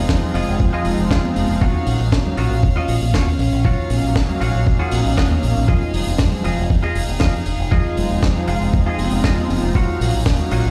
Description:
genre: nu-disco, nu disco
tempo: 118 BPM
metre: 4/4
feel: straight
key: Eb dorian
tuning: A4 = 435 Hz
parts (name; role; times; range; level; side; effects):
- warm analog pad; accompaniment; 0.0-10.6 s; F3 to F5; -26 LUFS; equal; chorus, sidechain pumping, tape echo
- warm studio violin section; sustained chords; 0.0-10.7 s; Db4 to F5; -31 LUFS; equal; vintage 12-bit sampler grit, sidechain pumping
- fingered electric bass with an envelope filter; bass; 0.0-10.7 s; F1 to F2; -22 LUFS; equal; none
- electronic kick drum; drums; 0.1-10.4 s; none; -20 LUFS; equal; none
- tight funk drum kit; drums; 0.1-10.6 s; hi-hat, snare drum; -30 LUFS; equal; none
- congas; percussion; 0.2-10.7 s; none; -31 LUFS; equal; none
- semi-hollow electric guitar; riff; 0.3-10.7 s; F4 to F5; -30 LUFS; equal; lush chorus, tape echo
room: small room ambience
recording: played on a big sound system in a bare room, large studio reverb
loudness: -18 LUFS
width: mono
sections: 0.0-10.7 A section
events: none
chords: 0.0 Fm7; 1.6 Ebm9; 5.7 Fm7; 9.8 Ebm9

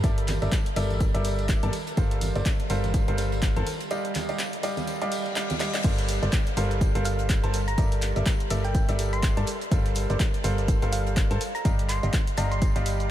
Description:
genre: piano house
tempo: 124 BPM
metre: 4/4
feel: swing 58% on 16ths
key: G minor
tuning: A4 = 442 Hz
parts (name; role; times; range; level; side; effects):
- clear baby grand piano; riff; 0.0-13.1 s; G3 to A5; -29 LUFS; right 1 dB; sidechain pumping, tape echo
- solid FM bass; bass; 0.0-13.1 s; G1 to G2; -27 LUFS; equal; tube saturation, sidechain pumping
- compact cocktail drum kit; drums; 0.0-13.0 s; hi-hat, snare drum, tambourine; -44 LUFS; equal; none
- electronic kick drum; drums; 0.0-12.7 s; none; -24 LUFS; equal; none
- punchy analog drum machine; drums; 0.0-13.1 s; crash cymbal, handclaps, hi-hat, shaker; -34 LUFS; equal; none
- tambourine and congas; percussion; 0.0-5.8 s; none; -38 LUFS; right 1 dB; none
- reverse cymbal; sound effects; 5.1-5.8 s; none; -41 LUFS; left 4 dB; none
- thumb-piano-like synth pluck; melody; 7.1-13.1 s; F5 to C6; -35 LUFS; equal; chorus, tape echo
room: light reverb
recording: none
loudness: -23 LUFS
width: side -12 dB against mid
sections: 0.0-5.8 A section; 5.8-13.1 B section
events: break 3.9-5.8; reverse cymbal 5.1-5.8; drum fill 5.6; band accent 5.7; drop 5.8-13.1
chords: 0.0 Gm69; 1.7 Gm11; 3.7 Ebmaj9/G; 5.8 Gm11; 7.8 Gm69; 9.5 Gm11; 11.4 Ebmaj9/G

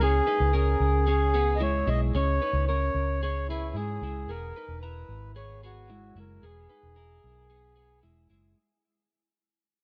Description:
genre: jangly indie pop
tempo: 112 BPM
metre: 4/4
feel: straight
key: unclear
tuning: A4 = 439 Hz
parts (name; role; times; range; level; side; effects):
- mellow accordion; melody; 0.0-8.0 s; E4 to D#5; -31 LUFS; equal; dub echo
- twelve-string electric guitar; arpeggios; 0.0-8.6 s; G#3 to A#5; -38 LUFS; equal; lush chorus, dub echo
- vintage muted fingered electric bass; bass; 0.0-8.5 s; E1 to G#2; -30 LUFS; equal; none
room: light reverb, small room ambience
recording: echo-heavy mix, cassette tape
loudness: -26 LUFS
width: mono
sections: 0.0-8.6 A section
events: fade-out 0.0-8.6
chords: 0.0 C#m; 4.3 E

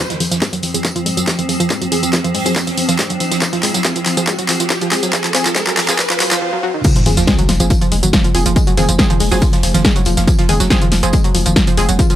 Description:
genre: driving peak-time techno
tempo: 140 BPM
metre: 4/4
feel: straight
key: F phrygian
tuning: A4 = 440 Hz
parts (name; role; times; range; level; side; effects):
- analog pluck; riff; 0.0-12.2 s; Eb3 to Ab3; -19 LUFS; right 1 dB; chorus, sidechain pumping, analog delay
- swarming drone; drone; 0.3-6.4 s; F3 to C4; -23 LUFS; equal; built-in reverb, sidechain pumping
- riser, swell and sub drop; sound effects; 0.0-8.6 s; none; -24 LUFS; right 1 dB; none
- loose indie drum kit; drums; 0.1-12.1 s; hi-hat, snare drum, tambourine; -27 LUFS; right 1 dB; none
- techno drum kit; drums; 0.1-12.2 s; crash cymbal, handclaps, hi-hat, snare drum, tambourine, toms; -18 LUFS; equal; overdrive, high-pass filter on toms, high-pass filter on snare, high-pass filter on hats, high-pass filter on perc, high-pass filter on cymbals
- filtered dub chord stab; stabs; 0.2-11.9 s; F3 to Ab4; -24 LUFS; right 1 dB; chorus, sidechain pumping, analog delay
- electronic kick drum; drums; 0.4-12.1 s; none; -15 LUFS; equal; overdrive, high-pass filter on kick
- growling 808-style bass; bass; 7.1-12.0 s; F1; -18 LUFS; equal; overdrive, sidechain pumping, low-pass filter
room: digital ambience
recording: high-pass filter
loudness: -12 LUFS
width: side -12 dB against mid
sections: 0.0-6.8 A section; 6.8-12.2 B section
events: build-up 0.0-6.8; drum fill 0.0-6.4; riser 0.0-6.4; filter sweep on synth arpeggio sound 0.0-6.8; filter sweep on synth stab 0.0-6.8; swell 6.0-6.8; break 6.4-6.8; drop 6.8-12.2; impact 6.8-8.6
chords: 0.0 Fm

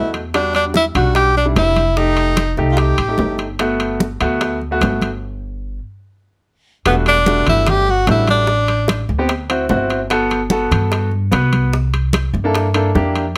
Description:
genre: Afro-Cuban jazz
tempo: 148 BPM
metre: 4/4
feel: straight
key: G major, E minor from 6.9 s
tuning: A4 = 438 Hz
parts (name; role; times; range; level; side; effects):
- warm tenor saxophone; melody; 0.0-3.4, 6.9-9.1 s; B3 to G4; -18 LUFS; equal; none
- clear baby grand piano; accompaniment; 0.0-13.2 s; G3 to D#5; -22 LUFS; equal; none
- upright bass; bass; 0.0-13.4 s; E1 to G2; -22 LUFS; equal; none
- bongos; percussion; 0.1-13.4 s; none; -27 LUFS; equal; none
- congas; percussion; 0.1-13.4 s; none; -25 LUFS; equal; none
- timbales; percussion; 0.1-13.4 s; none; -26 LUFS; equal; none
room: light reverb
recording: close, detailed microphones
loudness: -16 LUFS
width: mono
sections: 0.0-6.9 A section; 6.9-13.4 B section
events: stop 5.2-6.9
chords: 0.3 Em7; 2.0 F9; 3.6 Gmaj7; 6.9 Em11; 8.5 Am7; 9.3 D7; 10.1 Gmaj9; 11.7 C13

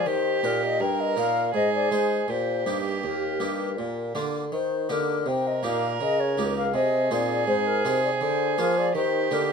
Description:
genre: classical, baroque-style sonata movement with continuo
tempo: 81 BPM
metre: 3/4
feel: straight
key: Eb major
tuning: A4 = 441 Hz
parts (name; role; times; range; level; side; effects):
- baroque flute; melody; 0.0-9.5 s; Bb4 to G5; -27 LUFS; left 8 dB; none
- warm violin; second line; 0.0-9.5 s; G4 to Bb4; -28 LUFS; right 7 dB; none
- harpsichord; accompaniment; 0.0-9.5 s; Db2 to Bb4; -30 LUFS; right 1 dB; none
- mellow bassoon; bass; 0.0-9.5 s; Db2 to Ab3; -28 LUFS; right 2 dB; none
room: light reverb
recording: minimal, uncompressed stereo recording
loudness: -22 LUFS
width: side -6 dB against mid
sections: 0.0-9.5 A section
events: none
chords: 0.1 Eb; 1.5 Ab; 2.3 Eb; 3.8 Bb; 4.5 Eb; 6.0 Eb7/Db; 6.7 Ab; 8.2 Bb7/D; 8.9 Eb

